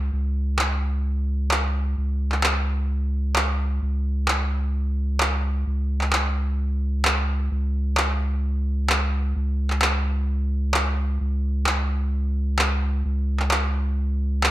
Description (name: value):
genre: EDM, festival progressive house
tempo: 130 BPM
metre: 4/4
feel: straight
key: unclear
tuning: A4 = 440 Hz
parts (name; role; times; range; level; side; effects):
- saturated sub bass; bass; 0.0-14.5 s; C#2; -22 LUFS; equal; none
- electronic handclaps; drums; 0.6-14.5 s; none; -23 LUFS; equal; overdrive
room: little or no reverb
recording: dark, warm production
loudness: -21 LUFS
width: side -15 dB against mid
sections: 0.0-14.5 A section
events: none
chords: none